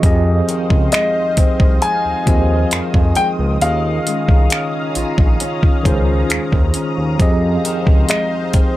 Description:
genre	contemporary R&B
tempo	67 BPM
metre	4/4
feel	straight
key	F minor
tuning	A4 = 441 Hz
part	tine electric piano	accompaniment	0.0-8.8 s	Eb3 to Eb5	-20 LUFS	right 1 dB	fast stereo tremolo
part	lush unison pad	sustained chords	0.0-8.8 s	Db4 to Eb6	-26 LUFS	left 2 dB	chorus, phaser, sidechain pumping
part	nylon-string guitar	arpeggios	0.0-8.8 s	F2 to F4	-27 LUFS	left 2 dB	analog delay
part	smooth synth bass	bass	0.0-8.6 s	Bb1 to F2	-18 LUFS	equal	none
part	detuned 8-bit digital drum machine	drums	0.0-8.7 s	finger snaps, hi-hat, kick drum	-14 LUFS	equal	overdrive
part	clear concert grand piano	melody	0.9-8.8 s	Eb5 to Ab5	-20 LUFS	left 2 dB	analog delay
room	little or no reverb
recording	dry, gritty hardware recording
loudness	-13 LUFS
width	side -15 dB against mid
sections	0.0-8.8 A section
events	none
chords	0.0 Fm7; 3.6 Eb9sus4; 7.2 Fm7

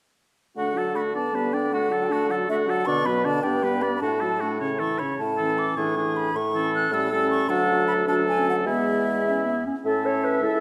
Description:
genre	quick classical-period movement for wind quintet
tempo	104 BPM (dotted quarters)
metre	6/8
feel	straight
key	D major, A major from 5.2 s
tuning	A4 = 436 Hz
part	silver concert flute	melody	0.6-10.6 s	E5 to F#6	-31 LUFS	equal	none
part	clear oboe	second line	0.6-10.6 s	E4 to E5	-30 LUFS	equal	none
part	warm French horn	accompaniment	0.6-10.6 s	C#3 to E4	-32 LUFS	equal	none
part	warm clarinet	accompaniment	0.6-10.6 s	B3 to C#5	-32 LUFS	equal	none
part	mellow bassoon	bass	0.6-10.6 s	C#2 to D3	-29 LUFS	equal	none
room	wet recital hall reverb, RT60 1.5 s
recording	none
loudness	-24 LUFS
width	mono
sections	0.6-9.9 A section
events	none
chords	0.6 D; 1.1 G/D; 1.7 D; 2.9 Bm; 3.4 G; 4.0 D/A; 4.6 A; 5.8 E7/A; 6.4 A; 6.9 A7; 7.5 D; 8.7 E; 9.9 A

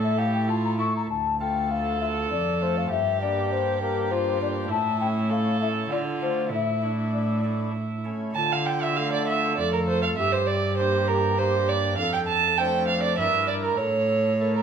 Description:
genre	classical, baroque-style sonata movement with continuo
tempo	99 BPM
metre	3/4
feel	straight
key	D minor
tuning	A4 = 439 Hz
part	mellow baroque flute	melody	0.0-14.6 s	F4 to C#6	-28 LUFS	left 7 dB	none
part	dark violin	second line	0.0-14.6 s	E4 to A5	-26 LUFS	right 6 dB	none
part	pipe organ, cornet	accompaniment	0.0-14.6 s	D2 to Bb4	-30 LUFS	equal	none
part	rich cello	bass	0.0-14.6 s	D2 to D3	-28 LUFS	right 1 dB	none
room	wet recital hall reverb, RT60 1.3 s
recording	minimal, uncompressed stereo recording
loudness	-22 LUFS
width	side -7 dB against mid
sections	0.0-8.4 A section; 8.4-14.6 A section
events	none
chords	0.0 A5; 1.1 Dm; 2.3 F; 2.9 Gm; 4.7 A; 5.9 Dm; 6.5 Asus4; 7.7 A; 8.4 Dm; 9.6 F; 10.2 Gm; 12.0 Dm/F; 13.2 Em7b5/G; 13.8 A

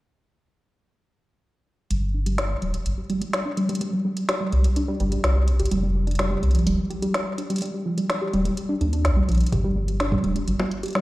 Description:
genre	IDM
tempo	126 BPM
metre	4/4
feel	straight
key	unclear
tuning	A4 = 440 Hz
part	warbly dusty pluck	arpeggios	1.9-11.0 s	F3 to G4	-25 LUFS	right 1 dB	chorus, cassette tape, tape echo
part	warm sub bass	bass	1.9-10.6 s	D1 to Eb2	-22 LUFS	equal	none
part	organic electronic drum kit	drums	1.9-11.0 s	bongos, hi-hat, snare drum	-28 LUFS	left 1 dB	digital delay
part	electronic kick drum	drums	9.5-10.2 s	none	-24 LUFS	equal	none
room	moderate lush hall reverb, RT60 2.2 s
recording	played on a big sound system in a bare room, large studio reverb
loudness	-21 LUFS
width	side -18 dB against mid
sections	1.9-11.0 A section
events	filter sweep on synth pluck 1.9-11.0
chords	1.9 G5; 3.8 C5; 5.7 Fsus2; 7.4 Ebmaj7; 9.5 G5

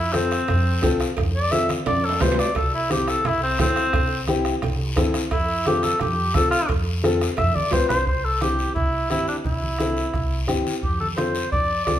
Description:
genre	latin, cumbia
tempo	174 BPM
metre	4/4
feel	straight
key	C major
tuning	A4 = 440 Hz
part	mellow cor anglais	melody	0.0-12.0 s	C4 to E5	-23 LUFS	equal	none
part	upright bass	bass	0.0-12.0 s	C2 to G2	-27 LUFS	equal	none
part	dark upright piano	accompaniment	0.1-12.0 s	C4 to B4	-25 LUFS	left 3 dB	none
part	bombo	percussion	0.1-12.0 s	none	-27 LUFS	right 1 dB	none
part	congas	percussion	0.1-12.0 s	none	-31 LUFS	right 2 dB	none
part	guiro	percussion	0.1-12.0 s	none	-34 LUFS	left 4 dB	none
part	cowbell and timbales	percussion	0.5-7.9 s	none	-31 LUFS	right 6 dB	none
room	wet large studio reverb, RT60 1.1 s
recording	band playing live in one room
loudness	-19 LUFS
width	side -11 dB against mid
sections	0.0-8.1 A section; 8.1-12.0 B section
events	cor anglais solo 0.0-8.1; drum fill 1.9-2.6, 7.6-8.1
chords	0.0 F; 2.6 C; 5.3 F; 8.1 C; 10.8 F

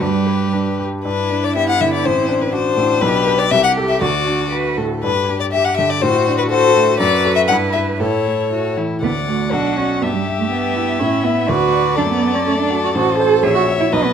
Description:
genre	quick classical-period movement for piano quartet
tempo	122 BPM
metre	2/4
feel	straight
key	G major, D major from 7.0 s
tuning	A4 = 439 Hz
part	rich violin	melody	0.0-14.1 s	E4 to F#5	-18 LUFS	left 7 dB	none
part	rich cello	second line	0.0-14.1 s	G3 to B4	-20 LUFS	right 7 dB	none
part	rich violin	second line	0.0-14.1 s	B3 to F#5	-24 LUFS	left 4 dB	none
part	clear baby grand piano	accompaniment	0.0-14.1 s	A1 to E5	-20 LUFS	equal	none
room	light reverb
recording	close, detailed microphones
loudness	-14 LUFS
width	side -8 dB against mid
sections	0.0-1.1 A section; 1.1-9.0 B section; 9.0-14.1 A section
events	none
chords	0.0 G; 2.0 D7/A; 3.0 G/B; 3.5 Am7/C; 4.0 D; 5.0 G5; 6.0 D7/A; 7.0 D/F#; 7.5 Em/G; 8.0 A; 9.0 D; 9.5 Bm; 10.0 Em/G; 11.0 A; 11.5 D; 12.0 D/F#; 12.9 F#dim/A; 13.4 F#7/A#

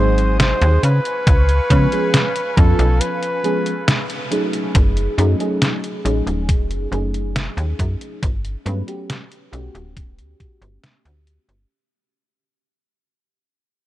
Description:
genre	vaporwave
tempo	69 BPM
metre	4/4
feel	straight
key	F# dorian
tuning	A4 = 441 Hz
part	warm flugelhorn	melody	0.0-4.3 s	A4 to B#4	-23 LUFS	equal	vintage 12-bit sampler grit, tape echo
part	mellow FM electric piano	accompaniment	0.0-11.7 s	E#3 to C#5	-23 LUFS	equal	analog chorus, analog delay
part	lush unison pad	sustained chords	0.0-4.7 s	B4 to D#6	-30 LUFS	equal	chorus, phaser, vintage 12-bit sampler grit
part	slap-like FM bass	bass	0.0-11.7 s	D1 to C#3	-18 LUFS	equal	none
part	detuned 8-bit digital drum machine	drums	0.2-11.7 s	hi-hat, snare drum	-21 LUFS	equal	vintage 12-bit sampler grit
part	electronic kick drum	drums	1.3-10.6 s	none	-16 LUFS	equal	vintage 12-bit sampler grit
room	little or no reverb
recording	cassette tape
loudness	-16 LUFS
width	side -15 dB against mid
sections	0.0-4.7 A section; 4.7-11.7 B section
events	break 3.0-4.7; band accent 3.9-4.3; fade-out 4.7-11.7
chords	0.0 G#7; 0.8 C#7; 4.7 F#m69; 8.2 Gmaj9#11

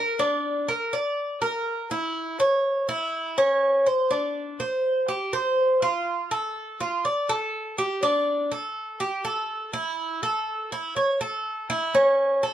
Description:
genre	latin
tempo	123 BPM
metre	4/4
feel	straight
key	unclear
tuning	A4 = 437 Hz
part	Cuban tres	solo	0.0-12.5 s	C#4 to D5	-23 LUFS	right 1 dB	none
room	moderate studio ambience, RT60 0.5 s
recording	lossy compression artefacts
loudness	-23 LUFS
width	side -11 dB against mid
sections	0.0-4.1 A section; 4.1-12.5 B section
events	none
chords	none

